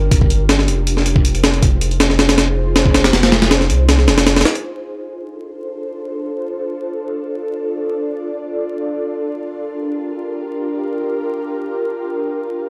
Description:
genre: drum and bass, jungle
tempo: 159 BPM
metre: 4/4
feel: straight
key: D minor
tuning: A4 = 440 Hz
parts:
  - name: ethereal airy pad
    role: sustained chords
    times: 0.0-12.7 s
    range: D4 to D5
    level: -25 LUFS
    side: equal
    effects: ensemble chorus, built-in reverb
  - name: soft dub sub bass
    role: bass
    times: 0.0-4.4 s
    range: F1 to C2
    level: -19 LUFS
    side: equal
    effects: none
  - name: breakbeat sampler-style drum kit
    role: drums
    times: 0.1-4.6 s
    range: hi-hat, kick drum, snare drum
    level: -16 LUFS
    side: equal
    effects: none
room: light reverb, digital ambience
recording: dry, gritty hardware recording, vinyl crackle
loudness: -17 LUFS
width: mono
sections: 0.0-4.6 A section; 4.6-12.7 B section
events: none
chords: 0.0 Gm7; 0.9 Fm7; 4.6 Dm7; 9.2 Gm7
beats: | 0.11 0.49 0.87 1.25 | 1.62 2.00 2.38 2.75 | 3.13 3.51 3.89 4.26 | 4.64 5.02 5.40 5.77 | 6.15 6.53 6.91 7.28 | 7.66 8.04 8.41 8.79 | 9.17 9.55 9.93 10.30 | 10.68 11.06 11.43 11.81 | 12.19 12.57

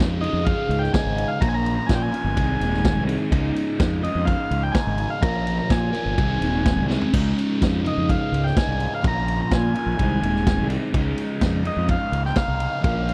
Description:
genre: psychedelic rock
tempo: 126 BPM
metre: 4/4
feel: straight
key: Db major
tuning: A4 = 440 Hz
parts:
  - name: overdriven semi-hollow guitar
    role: riff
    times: 0.0-13.1 s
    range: Db2 to Bb4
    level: -27 LUFS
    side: equal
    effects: phaser
  - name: fuzz fingered electric bass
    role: bass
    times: 0.0-13.1 s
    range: Eb1 to Bb2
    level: -27 LUFS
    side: equal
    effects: overdrive
  - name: vintage drum kit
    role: drums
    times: 0.0-13.1 s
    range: crash cymbal, kick drum, ride cymbal, snare drum, toms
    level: -27 LUFS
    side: equal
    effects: none
  - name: combo organ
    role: melody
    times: 0.2-13.1 s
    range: Eb5 to Bb5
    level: -30 LUFS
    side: equal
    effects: tape echo
room: little or no reverb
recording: dry, close 1970s-style studio recording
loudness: -22 LUFS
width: mono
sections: 0.0-13.1 A section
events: drum fill 6.9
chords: 0.0 Dbadd9; 1.4 Bbm; 2.4 Ab; 3.3 Dbadd9; 5.2 Bbm7; 6.2 Ab; 7.1 Dbadd9; 9.0 Bbm7; 10.0 Ab; 10.9 Dbadd9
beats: 0.46 0.94 | 1.42 1.89 2.37 2.85 | 3.33 3.80 4.28 4.75 | 5.23 5.71 6.18 6.66 | 7.14 7.61 8.09 8.56 | 9.04 9.52 9.99 10.47 | 10.94 11.42 11.89 12.37 | 12.84

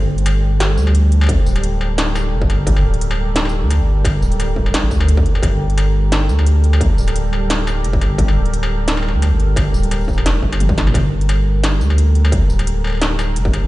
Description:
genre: half-time drum and bass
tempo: 174 BPM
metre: 4/4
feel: swing 54% on 16ths, half-time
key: G minor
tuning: A4 = 441 Hz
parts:
  - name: deep dark ambient pad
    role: sustained chords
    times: 0.0-13.7 s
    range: G3 to C5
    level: -24 LUFS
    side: equal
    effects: chorus, built-in reverb, vintage 12-bit sampler grit, sidechain pumping
  - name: saturated sub bass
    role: bass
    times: 0.0-13.7 s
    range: D1 to D2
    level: -15 LUFS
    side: equal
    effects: none
  - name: industrial drum kit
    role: drums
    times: 0.2-13.6 s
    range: hi-hat, snare drum, struck metal, tambourine, toms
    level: -23 LUFS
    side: equal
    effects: none
  - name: electronic kick drum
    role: drums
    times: 1.3-13.5 s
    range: none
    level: -17 LUFS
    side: equal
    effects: distortion
room: digital ambience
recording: played on a big sound system in a bare room, stone room reverb, nothing above 10.8 kHz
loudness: -13 LUFS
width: side -18 dB against mid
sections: 0.0-13.7 A section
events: drum fill 10.6-10.9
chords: 0.0 Gmadd9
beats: 0.26 0.60 0.95 | 1.29 1.64 1.98 2.33 | 2.67 3.02 3.36 3.70 | 4.05 4.39 4.74 5.08 | 5.43 5.77 6.12 6.46 | 6.81 7.15 7.50 7.84 | 8.19 8.53 8.88 9.22 | 9.57 9.91 10.26 10.60 | 10.95 11.29 11.64 11.98 | 12.32 12.67 13.02 13.36

